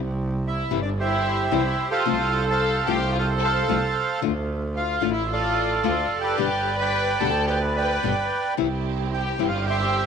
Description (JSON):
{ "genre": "tango", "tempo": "110 BPM", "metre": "4/4", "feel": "rubato", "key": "C major", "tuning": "A4 = 440 Hz", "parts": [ { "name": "clear double bass", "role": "bass", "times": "0.0-10.1 s", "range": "F1 to D2", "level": "-27 LUFS", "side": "right 2 dB", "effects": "none" }, { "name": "bandoneon", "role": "melody", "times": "0.5-10.1 s", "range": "G4 to B5", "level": "-24 LUFS", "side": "right 4 dB", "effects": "none" }, { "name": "warm chamber violin section", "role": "second line", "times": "0.5-10.1 s", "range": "D4 to B4", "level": "-29 LUFS", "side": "left 12 dB", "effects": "none" }, { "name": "nylon-string guitar", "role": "accompaniment", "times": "0.7-9.5 s", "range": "B2 to G4", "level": "-28 LUFS", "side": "left 13 dB", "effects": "none" }, { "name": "warm symphonic string section", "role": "stabs", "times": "8.6-10.1 s", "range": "C4 to G4", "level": "-32 LUFS", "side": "right 14 dB", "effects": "none" } ], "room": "light reverb, small room ambience", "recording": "1960s-style stereo with parts hard left and right", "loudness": "-21 LUFS", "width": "side -6 dB against mid", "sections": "0.0-10.1 A section", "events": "none", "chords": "0.0 C; 2.1 F/C; 4.2 Dm; 6.4 G; 8.6 C" }